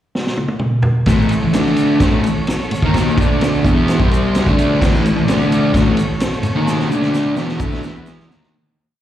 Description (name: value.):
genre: garage rock duo or trio.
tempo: 129 BPM.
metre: 4/4.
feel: straight.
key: A major.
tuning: A4 = 436 Hz.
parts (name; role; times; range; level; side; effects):
vintage drum kit; drums; 0.1-8.5 s; crash cymbal, kick drum, ride cymbal, snare drum, toms; -18 LUFS; equal; none.
combo organ; sustained chords; 1.1-8.5 s; C4 to A5; -28 LUFS; equal; plate reverb.
fuzz guitar; riff; 1.1-8.5 s; A2 to E4; -15 LUFS; left 1 dB; distortion, slapback echo.
tube shaker; percussion; 1.1-8.5 s; none; -40 LUFS; right 2 dB; none.
room: light reverb.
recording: live gig heard through the venue's PA, recital hall reverb.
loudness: -13 LUFS.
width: side -11 dB against mid.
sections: 0.0-1.1 pickup bar; 1.1-8.5 riff.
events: drum fill 0.2-1.1, 6.7-8.5; fade-out 6.7-8.5; transistor combo organ fill 7.1-8.5.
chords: 0.0 N.C.; 1.1 A; 1.6 D5; 2.0 A; 3.2 D5; 3.7 A; 4.0 C5; 4.5 A; 5.3 D5; 5.8 A; 6.9 D5; 7.4 A; 7.8 E5; 8.3 D#5.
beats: 0.15 0.62 | 1.09 1.55 2.02 2.49 | 2.95 3.42 3.89 4.36 | 4.82 5.29 5.75 6.22 | 6.68 7.15 7.61 8.07.